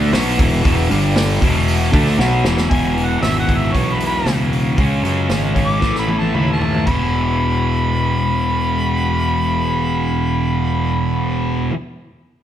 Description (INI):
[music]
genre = garage rock duo or trio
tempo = 115 BPM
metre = 4/4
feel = straight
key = E major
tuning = A4 = 440 Hz
[part]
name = thick fuzz guitar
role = riff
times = 0.0-11.7 s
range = E2 to D4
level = -18 LUFS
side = equal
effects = distortion
[part]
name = growling fingered electric bass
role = bass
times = 0.0-11.7 s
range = E1 to F#2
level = -20 LUFS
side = equal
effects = overdrive
[part]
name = vintage drum kit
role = drums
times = 0.1-7.0 s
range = crash cymbal, hi-hat, kick drum, snare drum, toms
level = -20 LUFS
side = equal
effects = none
[part]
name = clear harmonica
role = melody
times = 2.7-11.7 s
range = B4 to D6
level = -22 LUFS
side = equal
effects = overdrive
[sound]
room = moderate stone room reverb, RT60 1.3 s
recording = band playing live in one room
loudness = -15 LUFS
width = side -10 dB against mid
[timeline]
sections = 0.0-2.7 A section; 2.7-6.9 B section; 6.9-11.1 C section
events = drum fill 2.2-2.7, 5.8-6.9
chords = 0.0 E5; 0.9 G5; 1.4 E5; 2.7 E; 4.8 C#5; 5.8 A5; 6.9 E5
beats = 0.14 | 0.65 1.16 1.68 2.19 | 2.71 3.23 3.74 4.26 | 4.78 5.30 5.82 6.34 | 6.87 7.39 7.92 8.45 | 8.97 9.50 10.03 10.56